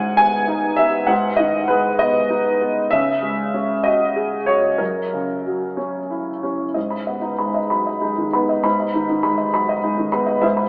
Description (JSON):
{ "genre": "neoclassical minimalist piano", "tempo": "60-68 BPM (dotted quarters)", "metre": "6/8", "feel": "rubato", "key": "G# minor", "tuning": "A4 = 441 Hz", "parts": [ { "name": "warm upright piano", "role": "solo", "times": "0.0-10.7 s", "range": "F#2 to B5", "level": "-20 LUFS", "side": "equal", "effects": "lush chorus" } ], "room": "wet plate reverb, RT60 2.8 s", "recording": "dreamy mix soaked in reverb, AM radio sound", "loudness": "-20 LUFS", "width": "mono", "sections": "0.0-6.8 A section; 6.8-10.7 B section", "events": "none", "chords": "0.0 G#m7; 2.9 C#sus4; 4.8 F#7; 6.8 G#m", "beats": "0.20 | 1.09 2.00 | 2.92 3.85 | 4.80 5.77 | 6.75 7.69 | 8.64 9.54 | 10.44" }